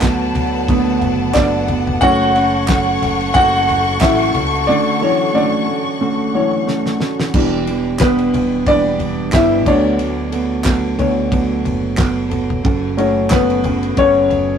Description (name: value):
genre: piano-driven pop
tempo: 90 BPM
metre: 4/4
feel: swing 56% on 16ths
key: unclear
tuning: A4 = 440 Hz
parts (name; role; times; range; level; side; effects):
- clear concert grand piano; accompaniment; 0.0-14.6 s; D3 to F#5; -16 LUFS; left 1 dB; none
- warm symphonic string section; sustained chords; 0.0-7.3 s; A4 to C#6; -21 LUFS; left 3 dB; none
- mellow electric guitar; riff; 0.0-14.6 s; D3 to A4; -20 LUFS; right 3 dB; spring reverb
- fingered electric bass; bass; 0.0-14.6 s; E1 to D2; -24 LUFS; right 1 dB; none
- damped 70s drum kit; drums; 0.0-14.5 s; crash cymbal, handclaps, kick drum, ride cymbal, snare drum, toms; -20 LUFS; equal; none
- group handclap; percussion; 0.0-13.5 s; none; -29 LUFS; right 5 dB; none
room: moderate small room ambience, RT60 0.5 s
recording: rough rehearsal-room recording, tube saturation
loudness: -13 LUFS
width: side -8 dB against mid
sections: 0.0-7.3 A section; 7.3-14.6 A section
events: grand piano solo 0.0-7.3, 7.3-14.6; break 4.7-7.3; drum fill 6.7-7.3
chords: 0.0 Bm7/D; 2.0 F#m; 4.7 Dmaj7; 7.3 Em7; 9.7 Bm7/D; 12.7 F#m